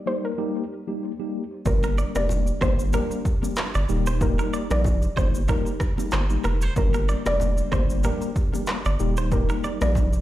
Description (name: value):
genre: afrobeats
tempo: 94 BPM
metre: 4/4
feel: swing 55% on 16ths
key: unclear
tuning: A4 = 440 Hz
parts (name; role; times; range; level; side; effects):
- soft round pluck; melody; 0.0-10.2 s; Bb4 to D5; -30 LUFS; left 1 dB; chorus, tape echo
- mellow tine electric piano; accompaniment; 0.1-10.0 s; G3 to G4; -29 LUFS; left 2 dB; medium stereo tremolo
- saturated sub bass; bass; 1.7-10.2 s; Eb1 to Bb1; -23 LUFS; equal; none
- deep house drum kit; drums; 1.7-10.2 s; handclaps, kick drum, rim click, shaker; -26 LUFS; equal; overdrive
- congas and bongos; percussion; 1.7-10.1 s; none; -35 LUFS; left 2 dB; none
- direct-recorded clean electric guitar; riff; 1.8-9.8 s; Bb4 to D5; -34 LUFS; right 4 dB; tape echo
room: digital ambience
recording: played on a big sound system in a bare room, stone room reverb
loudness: -21 LUFS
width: side -14 dB against mid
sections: 0.0-10.2 A section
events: none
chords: 0.0 Eb; 1.7 Gm; 3.9 Eb; 6.8 Gm; 9.0 Eb